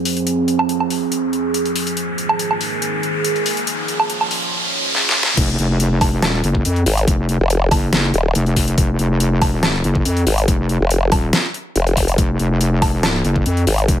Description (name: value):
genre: heavy wobble dubstep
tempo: 141 BPM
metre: 4/4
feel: half-time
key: unclear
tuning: A4 = 441 Hz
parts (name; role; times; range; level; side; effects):
- evolving wavetable pad; sustained chords; 0.0-5.4 s; F2 to Ab4; -21 LUFS; right 4 dB; chorus, built-in reverb, phaser, sidechain pumping
- riser; sound effects; 0.5-5.4 s; none; -23 LUFS; equal; none
- dubstep drum kit; drums; 0.1-14.0 s; crash cymbal, hi-hat, snare drum, woodblock; -20 LUFS; equal; overdrive, high-pass filter on perc, high-pass filter on hats, high-pass filter on snare, high-pass filter on cymbals
- wobble bass; bass; 5.4-14.0 s; Eb1 to F2; -17 LUFS; left 1 dB; chorus, overdrive
- electronic kick drum; drums; 5.4-14.0 s; none; -18 LUFS; left 1 dB; overdrive
- formant-sweep wobble bass; bass; 6.9-13.9 s; Eb1 to Ab1; -15 LUFS; left 1 dB; chorus, overdrive
room: light reverb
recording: high-pass filter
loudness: -15 LUFS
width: side -10 dB against mid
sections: 0.0-5.4 A section; 5.4-14.0 B section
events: build-up 0.0-5.4; filter sweep on ambient pad 0.0-5.4; filter sweep 0.0-5.4; riser 0.5-5.4; drum fill 4.9-5.4; drop 5.4-14.0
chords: 0.0 Fm; 2.0 Absus2; 3.7 Bbm7; 5.4 N.C.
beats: | 0.27 0.69 1.12 1.54 | 1.97 2.39 2.82 3.25 | 3.67 4.10 4.52 4.95 | 5.37 5.80 6.22 6.65 | 7.08 7.50 7.93 8.35 | 8.78 9.20 9.63 10.05 | 10.48 10.90 11.33 11.76 | 12.18 12.61 13.03 13.46 | 13.88